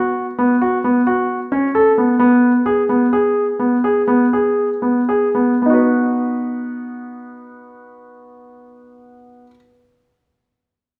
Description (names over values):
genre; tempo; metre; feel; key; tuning
contemporary instrumental, contemporary; 111-133 BPM; 7/4; straight; B major; A4 = 439 Hz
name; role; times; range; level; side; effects
clear concert grand piano; arpeggios; 0.0-9.5 s; B3 to B4; -17 LUFS; equal; none
room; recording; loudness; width
wet recital hall reverb, RT60 1.7 s; none; -16 LUFS; mono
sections
0.0-5.6 A section; 5.6-9.4 B section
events
slowing down 1.7-5.6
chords
0.0 B5; 2.2 G#m/B; 5.6 B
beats
0.40 0.85 1.30 1.75 | 2.20 2.66 3.12 3.60 4.08 4.58 5.09 | 5.62 6.16 6.70 7.24 7.78 8.32 8.87